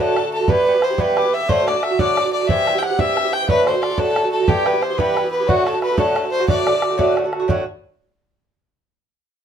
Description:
celtic folk, Celtic jig; 120 BPM (dotted quarters); 6/8; straight; D mixolydian; A4 = 440 Hz
rich fiddle; melody; 0.0-7.1 s; F#4 to G5; -20 LUFS; equal
breathy bright tin whistle; second line; 0.0-7.1 s; F#5 to G6; -26 LUFS; left 6 dB
Irish bouzouki; accompaniment; 0.0-7.6 s; G2 to G4; -20 LUFS; right 2 dB
bodhran; percussion; 0.2-7.7 s; -22 LUFS; right 2 dB
moderate studio reverb, RT60 0.6 s; minimal, uncompressed stereo recording; -16 LUFS; side -8 dB against mid
0.0-7.5 A section; 7.5-8.5 B section
0.5 Em; 1.5 D; 2.5 C; 3.5 D; 4.5 Em; 5.5 D
| 0.48 0.98 | 1.48 1.98 | 2.48 2.98 | 3.48 3.98 | 4.48 4.98 | 5.49 5.99 | 6.49 6.99 | 7.49

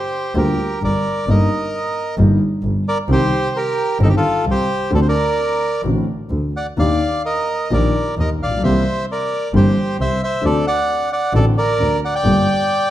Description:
tango; 132 BPM; 4/4; rubato; A4 = 440 Hz
bandoneon; melody; 0.0-12.9 s; Eb4 to G5; -19 LUFS; right 1 dB
clear double bass; bass; 0.3-12.4 s; G1 to Eb2; -20 LUFS; right 1 dB
dark concert grand piano; accompaniment; 0.4-12.4 s; G1 to G4; -19 LUFS; left 1 dB
wet large studio reverb, RT60 1.4 s; -15 LUFS; side -13 dB against mid
0.0-12.9 A section
0.0 Gm7; 1.3 Ebmaj7/G; 3.1 Cm; 4.9 D7; 6.8 Ebmaj7; 8.6 C7; 10.4 D7; 12.3 Gm
0.36 0.82 | 1.27 1.73 2.18 2.63 | 3.09 3.54 4.00 4.46 | 4.92 5.38 5.84 6.31 | 6.78 7.25 7.71 8.17 | 8.62 9.08 9.53 9.98 | 10.44 10.89 11.34 11.80 | 12.26 12.71

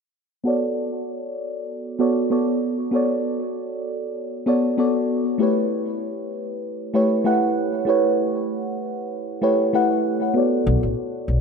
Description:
sunset chillout; 97 BPM; 4/4; swing 54% on 16ths; B minor; A4 = 439 Hz
mellow FM electric piano; accompaniment; 0.4-11.4 s; A3 to F#5; -20 LUFS; moving between left 3 dB and right 4 dB; chorus, phaser, auto-pan, low-pass filter, digital delay
upright bass; bass; 10.7-11.4 s; A1 to B1; -19 LUFS; left 1 dB; tube saturation
wet plate reverb, RT60 3.3 s; -20 LUFS; side -5 dB against mid
0.5-10.4 A section; 10.4-11.4 B section
filter sweep on FM electric piano 0.5-10.4, 10.4-11.4
0.5 Bm7; 5.4 A7; 10.4 Bm7
| 0.46 1.08 1.70 2.32 | 2.94 3.56 4.17 4.79 | 5.41 6.03 6.65 7.27 | 7.88 8.50 9.12 9.74 | 10.36 10.98

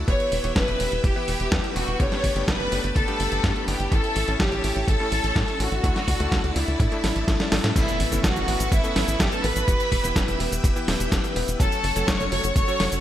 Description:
italo disco; 125 BPM; 4/4; straight; A4 = 440 Hz
string machine, full ensemble; sustained chords; 0.0-13.0 s; A4 to E6; -32 LUFS; equal; ensemble chorus
bright electric grand piano; stabs; 0.0-13.0 s; G2 to C#5; -31 LUFS; left 3 dB
tight sequencer bass; bass; 0.0-13.0 s; E1 to A2; -27 LUFS; equal
rich studio violin section; melody; 0.1-13.0 s; E4 to C#6; -27 LUFS; equal; tape echo
dusty soul sampler-style drum kit; drums; 0.1-13.0 s; cabasa, crash cymbal, hi-hat, snare drum; -27 LUFS; equal; gated reverb
electronic kick drum; drums; 0.1-12.7 s; -24 LUFS; equal
impact; sound effects; 7.8-9.7 s; -34 LUFS; equal
little or no reverb; -20 LUFS; side -12 dB against mid
0.0-7.8 A section; 7.8-13.0 B section
drum fill 7.0-7.8; impact 7.8-9.7
0.1 Em; 2.0 Gadd9; 3.9 A; 5.8 Dadd9; 6.8 Asus4; 7.8 Aadd9; 9.7 Em; 11.6 F#m
| 0.08 0.56 1.04 1.52 | 2.00 2.48 2.96 3.44 | 3.92 4.40 4.88 5.36 | 5.84 6.32 6.80 7.28 | 7.76 8.24 8.72 9.20 | 9.68 10.16 10.64 11.12 | 11.60 12.08 12.56

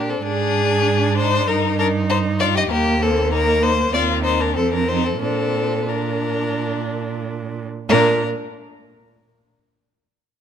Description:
quick classical-period movement for string quartet; 88-99 BPM; 4/4; rubato; Bb major; A4 = 436 Hz
rich violin; second line; 0.0-8.2 s; G4 to Eb5; -21 LUFS; left 3 dB
warm viola; accompaniment; 0.0-8.3 s; Bb3 to Eb4; -25 LUFS; right 3 dB
rich cello; bass; 0.0-8.2 s; Eb2 to Bb2; -22 LUFS; right 5 dB
rich violin; melody; 0.1-8.2 s; Bb3 to G4; -25 LUFS; left 10 dB
moderate recital hall reverb, RT60 1.7 s; close, detailed microphones; -17 LUFS; side -8 dB against mid
0.0-7.9 A section; 7.9-10.4 B section
0.2 Ab; 1.5 Eb/G; 2.7 Eb5; 3.9 Cm/Eb; 4.6 F5; 5.2 Bb
| 0.24 0.86 1.48 2.09 | 2.70 3.32 3.93 4.56 | 5.21 5.88 6.55 7.22 | 7.89

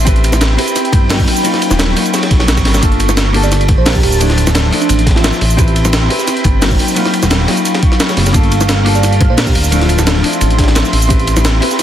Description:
liquid drum and bass; 174 BPM; 4/4; straight; G dorian; A4 = 440 Hz
shimmering ambient pad; sustained chords; 0.0-11.8 s; C4 to Db6; -20 LUFS; right 2 dB; chorus, built-in reverb
smooth gliding synth bass; bass; 0.0-11.6 s; D1 to Bb1; -13 LUFS; equal
vintage hollow-body jazz guitar; accompaniment; 0.1-11.8 s; F3 to B4; -17 LUFS; left 2 dB; ping-pong delay
breakbeat sampler-style drum kit; drums; 0.1-11.8 s; hi-hat, shaker, snare drum; -17 LUFS; equal
crunchy breakbeat drum kit; drums; 0.1-11.8 s; hi-hat, ride cymbal, snare drum; -21 LUFS; equal; high-pass filter on cymbals, high-pass filter on hats, high-pass filter on snare, high-pass filter on room
electronic kick drum; drums; 0.1-11.2 s; -13 LUFS; equal
bongos; percussion; 0.3-11.4 s; -23 LUFS; left 4 dB
bell-like FM electric piano; melody; 3.4-5.4, 9.0-11.0 s; D4 to D5; -21 LUFS; right 3 dB; chorus, phaser, tape echo
light reverb, small room ambience; dense, heavily limited modern master; -9 LUFS; side -11 dB against mid
0.0-11.8 A section
drum fill 2.7
0.0 Am9; 1.3 Ebm9; 2.8 Gm9; 4.2 Dm9; 5.4 Am9; 6.8 Ebm9; 8.3 Gm9; 9.7 Dm9; 10.9 Am9
| 0.07 0.41 0.76 1.10 | 1.45 1.79 2.14 2.48 | 2.83 3.17 3.52 3.86 | 4.21 4.55 4.90 5.24 | 5.59 5.93 6.28 6.62 | 6.96 7.31 7.66 8.00 | 8.34 8.69 9.03 9.38 | 9.72 10.07 10.41 10.76 | 11.10 11.45 11.79

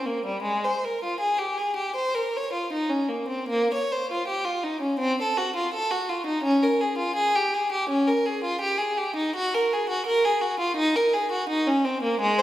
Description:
classical, baroque-style suite movement for unaccompanied violin; 72-86 BPM; 4/4; rubato; A4 = 439 Hz
clear violin; solo; 0.0-12.4 s; G3 to Db5; -22 LUFS; equal
wet recital hall reverb, RT60 1.7 s; heard from further back in the room; -23 LUFS; side -13 dB against mid
0.0-12.4 A section
| 0.45 1.23 1.99 2.73 | 3.51 4.28 5.01 5.72 | 6.43 7.15 7.88 8.60 | 9.35 10.07 10.77 11.48 | 12.19

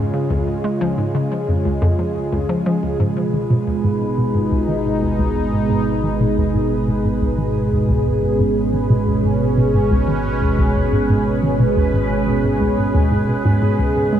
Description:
ambient, sequencer-driven space music; 89 BPM; 4/4; straight; G# dorian; A4 = 440 Hz
sweeping resonant pad; sustained chords; 0.0-14.2 s; B2 to G#4; -19 LUFS; right 1 dB; chorus, shimmer reverb
hollow square pluck; riff; 0.0-14.2 s; C#2 to G#3; -20 LUFS; equal; chorus, cassette tape, tape echo
fat analog bass; bass; 3.0-14.2 s; G#1 to C#2; -26 LUFS; equal
bubbling stepped-filter texture; texture; 3.3-14.2 s; B4; -28 LUFS; right 1 dB; chorus, built-in reverb, shimmer reverb
moderate huge ambient reverb, RT60 8.7 s; cassette tape; -16 LUFS; side -10 dB against mid
0.0-3.0 A section; 3.0-14.2 B section
filter sweep on synth arpeggio sound 3.0-14.2
0.0 C#; 3.0 G#m
| 0.30 0.98 1.65 2.33 | 3.00 3.67 4.35 5.02 | 5.70 6.37 7.05 7.72 | 8.39 9.07 9.74 10.42 | 11.09 11.77 12.44 13.11 | 13.79

